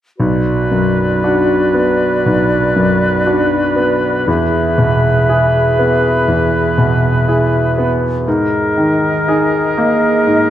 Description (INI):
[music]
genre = cinematic, emotional film score for orchestra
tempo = 60 BPM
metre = 4/4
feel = rubato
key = B dorian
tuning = A4 = 441 Hz
[part]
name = mellow silver concert flute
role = second line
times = 0.2-10.5 s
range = D5 to E5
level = -20 LUFS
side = equal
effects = none
[part]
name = warm clarinet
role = second line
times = 0.2-10.5 s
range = F#4 to G#4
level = -20 LUFS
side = equal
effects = none
[part]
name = warm oboe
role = second line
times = 0.2-10.5 s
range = A#4 to B4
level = -19 LUFS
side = left 1 dB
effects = none
[part]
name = bright concert grand piano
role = accompaniment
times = 0.2-10.5 s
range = B1 to G#4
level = -14 LUFS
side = equal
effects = none
[sound]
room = wet scoring stage reverb, RT60 1.9 s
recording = none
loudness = -11 LUFS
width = side -11 dB against mid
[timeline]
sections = 0.2-10.5 A section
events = none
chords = 0.2 Bm; 4.3 E; 8.3 G#sus2